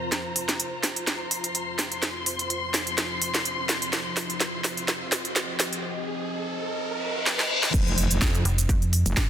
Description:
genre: bass house.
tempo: 126 BPM.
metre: 4/4.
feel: swing 54% on 16ths.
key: unclear.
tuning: A4 = 440 Hz.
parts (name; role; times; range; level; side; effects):
deep dark ambient pad; sustained chords; 0.0-9.3 s; F3 to Bb5; -36 LUFS; equal; chorus, built-in reverb, sidechain pumping.
warm studio string section; texture; 0.0-5.8 s; F4 to C6; -31 LUFS; left 2 dB; sidechain pumping.
house drum kit; drums; 0.1-9.3 s; crash cymbal, hi-hat, shaker, snare drum; -26 LUFS; right 1 dB; soft clipping on snare, high-pass filter on snare, studio reverb, high-pass filter on hats, high-pass filter on cymbals, high-pass filter on perc.
riser, reverse cymbal and impact; sound effects; 2.3-9.3 s; none; -32 LUFS; equal; none.
metallic wobble bass; bass; 7.7-9.2 s; F1 to F2; -25 LUFS; equal; chorus, tube saturation, sidechain pumping.
electronic kick drum; drums; 7.7-9.3 s; none; -24 LUFS; equal; studio reverb.
metallic FM bass; bass; 8.5-9.3 s; F1 to F2; -23 LUFS; equal; tube saturation, sidechain pumping.
room: light reverb.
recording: dense, heavily limited modern master, high-pass filter.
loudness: -23 LUFS.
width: side -10 dB against mid.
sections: 0.1-7.7 A section; 7.7-9.3 B section.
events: build-up 0.1-7.7; drum fill 0.1-5.8, 7.3-7.7; riser 2.3-7.7; reverse cymbal 6.8-7.7; drop 7.7-9.3; impact 7.7-9.3.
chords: 0.1 F5.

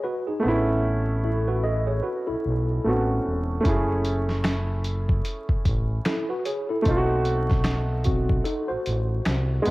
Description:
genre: lo-fi hip hop.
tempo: 75 BPM.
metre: 4/4.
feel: swing 59% on 16ths.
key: unclear.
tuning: A4 = 440 Hz.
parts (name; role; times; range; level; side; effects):
tine electric piano; second line; 0.0-9.6 s; C4 to D#5; -29 LUFS; equal; overdrive, fast stereo tremolo, low-pass filter, cassette tape, tape echo.
warm upright piano; accompaniment; 0.0-9.7 s; G#3 to G#4; -27 LUFS; right 1 dB; cassette tape, low-pass filter.
growling FM bass; bass; 0.5-9.7 s; E1 to E2; -25 LUFS; equal; none.
lo-fi sampler-style drum kit; drums; 3.6-9.7 s; finger snaps, hi-hat, kick drum, snare drum; -25 LUFS; equal; cassette tape.
room: light reverb.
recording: home recording on cassette, vinyl crackle.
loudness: -22 LUFS.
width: side -19 dB against mid.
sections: 0.0-9.7 A section.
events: none.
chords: 0.5 Aadd9; 3.7 F#m7; 6.9 B7b9.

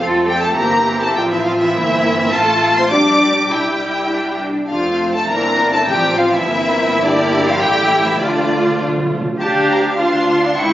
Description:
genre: quick classical-period movement for symphony orchestra.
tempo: 102 BPM.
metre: 2/4.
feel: rubato.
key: F major, D minor from 7.0 s.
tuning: A4 = 440 Hz.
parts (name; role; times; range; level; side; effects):
warm studio violin section; melody; 0.0-10.7 s; D5 to D6; -18 LUFS; left 1 dB; none.
rich chamber violin section; second line; 0.0-10.7 s; D4 to G5; -21 LUFS; left 1 dB; none.
rich chamber viola section; accompaniment; 0.0-10.7 s; E3 to G4; -20 LUFS; right 1 dB; none.
warm French horn section; sustained chords; 0.0-8.8 s; D3 to D4; -23 LUFS; left 1 dB; none.
rich chamber double bass section; bass; 0.0-10.7 s; F1 to F2; -26 LUFS; right 2 dB; none.
warm chamber cello section; bass; 0.0-10.7 s; C4 to A4; -20 LUFS; right 1 dB; none.
timpani; percussion; 5.9-9.4 s; A2 to D3; -27 LUFS; equal; none.
room: wet concert hall reverb, RT60 2.0 s.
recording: recorded on a phone in the room, club reverb, nothing above 7.5 kHz.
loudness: -13 LUFS.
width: side -13 dB against mid.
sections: 0.0-9.4 A section; 9.4-10.7 B section.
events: timpani fill 8.2-9.4.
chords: 0.0 F; 0.6 C7/G; 1.2 F/A; 1.8 C7/G; 2.3 F/A; 2.9 Gm/Bb; 3.5 C; 4.7 F; 5.3 C7/G; 5.9 F/A; 6.5 C7/G; 7.0 Em7b5/G; 7.6 A5; 8.2 Dm.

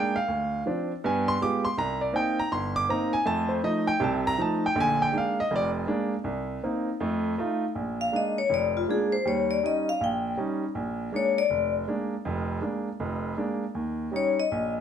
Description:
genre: jazz.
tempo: 160 BPM.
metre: 4/4.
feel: swing 63% on 8ths.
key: Bb mixolydian.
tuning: A4 = 440 Hz.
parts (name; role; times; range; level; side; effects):
clear baby grand piano; accompaniment; 0.0-14.8 s; F1 to D6; -26 LUFS; right 1 dB; none.
vibraphone with medium hard mallets; melody; 8.0-11.7, 14.2-14.7 s; F4 to G5; -25 LUFS; left 5 dB; none.
room: moderate large studio reverb, RT60 0.8 s.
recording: none.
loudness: -25 LUFS.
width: side -8 dB against mid.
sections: 0.0-7.8 A section; 7.8-14.8 B section.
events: none.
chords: 0.3 Dm7; 1.0 G7b9; 1.8 Cm7; 3.3 F7; 4.8 Bb7; 6.3 Cm7; 7.0 F7; 7.8 Bb7; 9.3 Eb7; 10.8 Bb7; 13.8 Eb7.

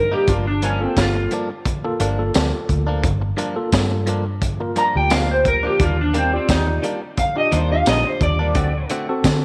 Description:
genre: straight-eighth soul blues.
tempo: 87 BPM.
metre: 4/4.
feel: swing 54% on 16ths.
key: G minor.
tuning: A4 = 442 Hz.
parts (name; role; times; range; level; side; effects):
electric guitar at the edge of break-up; melody; 0.0-8.9 s; C4 to Bb5; -23 LUFS; equal; lush chorus.
bright tine electric piano; accompaniment; 0.0-9.4 s; Bb3 to D5; -29 LUFS; equal; none.
vintage muted fingered electric bass; bass; 0.0-9.4 s; G1 to D3; -24 LUFS; equal; none.
direct-recorded clean electric guitar; stabs; 0.1-9.4 s; G2 to F#4; -30 LUFS; equal; none.
crunchy breakbeat drum kit; drums; 0.3-9.4 s; hi-hat, kick drum, snare drum, tambourine; -24 LUFS; equal; none.
room: light reverb.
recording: none.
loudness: -19 LUFS.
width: mono.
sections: 0.0-9.4 A section.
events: none.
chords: 0.3 Gm7; 5.8 Ebmaj7; 8.6 D7.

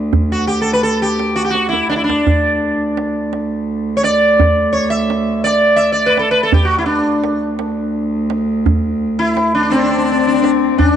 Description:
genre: Persian modal ensemble.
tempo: 56 BPM (dotted quarters).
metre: 6/8.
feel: straight.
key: D dastgah mahur.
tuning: A4 = 440 Hz.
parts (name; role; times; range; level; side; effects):
warm cello; drone; 0.0-11.0 s; D2 to G2; -20 LUFS; right 2 dB; stereo widening.
tombak; percussion; 0.1-11.0 s; none; -17 LUFS; right 2 dB; none.
sitar; melody; 0.3-11.0 s; C4 to E5; -15 LUFS; equal; none.
dark kamancheh; second line; 9.7-11.0 s; C4 to D4; -15 LUFS; left 14 dB; none.
room: light reverb, studio reverb.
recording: 1960s-style stereo, nothing above 11.0 kHz.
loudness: -13 LUFS.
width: side -9 dB against mid.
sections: 0.0-10.8 A section.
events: drum fill 1.5-2.3.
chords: none.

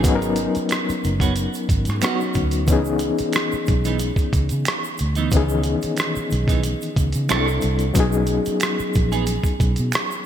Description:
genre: R&B, neo-soul.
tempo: 91 BPM.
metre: 4/4.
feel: swing 53% on 16ths.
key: C# dorian.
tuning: A4 = 441 Hz.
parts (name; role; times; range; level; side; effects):
overdriven reed electric piano; accompaniment; 0.0-10.3 s; D#3 to A#4; -23 LUFS; left 3 dB; fast tremolo.
vintage muted fingered electric bass; bass; 0.0-9.9 s; F#1 to C#3; -22 LUFS; right 1 dB; none.
dusty soul sampler-style drum kit; drums; 0.0-10.1 s; hi-hat, kick drum, rim click; -23 LUFS; right 1 dB; none.
egg shaker and finger snaps; percussion; 0.0-10.3 s; none; -34 LUFS; right 8 dB; none.
clean electric guitar; second line; 1.2-9.2 s; E3 to A4; -29 LUFS; right 7 dB; lush chorus.
room: moderate lush hall reverb, RT60 2.7 s.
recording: dreamy mix soaked in reverb.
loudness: -18 LUFS.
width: side -10 dB against mid.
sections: 0.0-10.3 A section.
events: none.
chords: 0.0 G#m11; 2.7 C#m9; 7.3 C6; 8.0 B6.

